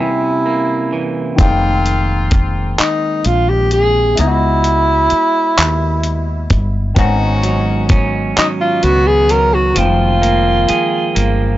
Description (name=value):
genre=slow six-eight R&B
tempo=43 BPM (dotted quarters)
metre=6/8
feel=straight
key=F minor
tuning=A4 = 439 Hz
part: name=breathy tenor saxophone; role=melody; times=0.0-11.6 s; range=Eb4 to Bb4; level=-15 LUFS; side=equal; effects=none
part: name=electric guitar at the edge of break-up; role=second line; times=0.0-2.0, 7.0-11.6 s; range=Ab2 to Ab4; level=-19 LUFS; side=right 4 dB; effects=none
part: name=barky tine electric piano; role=accompaniment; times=0.0-11.6 s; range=Eb3 to G5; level=-22 LUFS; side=left 4 dB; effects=overdrive, phaser
part: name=clear horn section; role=stabs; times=1.4-2.7, 7.0-8.3 s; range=Bb3 to Gb4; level=-24 LUFS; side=left 2 dB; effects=tape echo
part: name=woody fretless electric bass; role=bass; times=1.4-11.6 s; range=F1 to Eb2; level=-16 LUFS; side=equal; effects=wide subtle chorus
part: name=dusty soul sampler-style drum kit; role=drums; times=1.4-11.4 s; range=handclaps, hi-hat, kick drum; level=-14 LUFS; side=equal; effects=none
room=little or no reverb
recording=dry, gritty hardware recording, nothing above 7.7 kHz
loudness=-12 LUFS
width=side -14 dB against mid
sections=0.0-1.4 A section; 1.4-11.6 B section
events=break 0.0-1.4; drum fill 9.8-11.6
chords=0.0 C7b9; 1.4 Fm11; 4.2 Dbm11; 7.0 Abm11; 9.8 Fm11